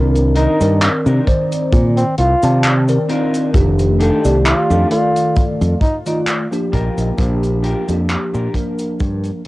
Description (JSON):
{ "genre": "vaporwave", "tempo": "66 BPM", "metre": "4/4", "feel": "swing 55% on 16ths", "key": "C dorian", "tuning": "A4 = 441 Hz", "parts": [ { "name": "bell-like tine electric piano", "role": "accompaniment", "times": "0.0-9.4 s", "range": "Eb3 to A5", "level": "-19 LUFS", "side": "equal", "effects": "analog chorus, cassette tape, analog delay" }, { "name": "modern bright fingered electric bass", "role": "bass", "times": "0.0-9.3 s", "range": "F1 to C3", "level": "-15 LUFS", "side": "equal", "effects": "none" }, { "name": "modern studio drum kit", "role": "drums", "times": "0.2-9.5 s", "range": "cabasa, handclaps, hi-hat", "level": "-22 LUFS", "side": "equal", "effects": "cassette tape" }, { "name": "mellow flugelhorn", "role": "melody", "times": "0.4-6.2 s", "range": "C4 to F4", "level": "-20 LUFS", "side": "equal", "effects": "cassette tape, tape echo" }, { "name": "mellow electric guitar", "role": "riff", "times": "0.4-8.8 s", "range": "C4 to Bb4", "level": "-23 LUFS", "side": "left 2 dB", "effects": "lush chorus, cassette tape, analog delay" }, { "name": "kick drum", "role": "drums", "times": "1.3-9.2 s", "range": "none", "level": "-16 LUFS", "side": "equal", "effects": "cassette tape" } ], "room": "light reverb", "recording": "home recording on cassette", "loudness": "-13 LUFS", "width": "side -19 dB against mid", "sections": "0.0-9.5 A section", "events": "fade-out 4.8-9.5", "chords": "0.0 Cm9; 3.5 F13; 6.7 Bb6", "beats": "0.82 1.73 2.64 | 3.54 4.45 5.36 6.27 | 7.18 8.09 9.00" }